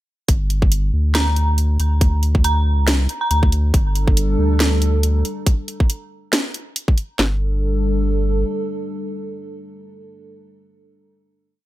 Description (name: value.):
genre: deep dubstep.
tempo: 139 BPM.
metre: 4/4.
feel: swing 56% on 16ths, half-time.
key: G minor.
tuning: A4 = 443 Hz.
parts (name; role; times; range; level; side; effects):
saturated sub bass; bass; 0.3-8.4 s; G1 to D2; -17 LUFS; equal; tube saturation.
garage drum kit; drums; 0.3-7.3 s; kick drum, snare drum; -16 LUFS; equal; none.
garage drum kit; drums; 0.3-7.1 s; hi-hat, snare drum; -21 LUFS; equal; none.
dark detuned synth bell; melody; 1.1-3.4 s; Bb5; -26 LUFS; right 2 dB; chorus, tremolo, dub echo.
dark analog pad; sustained chords; 4.0-10.3 s; G3 to A4; -25 LUFS; equal; chorus.
room: digital ambience.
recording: none.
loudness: -16 LUFS.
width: side -16 dB against mid.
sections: 0.3-7.2 drop; 7.2-10.6 final chord.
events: drop 0.3-7.2.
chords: 0.3 G5.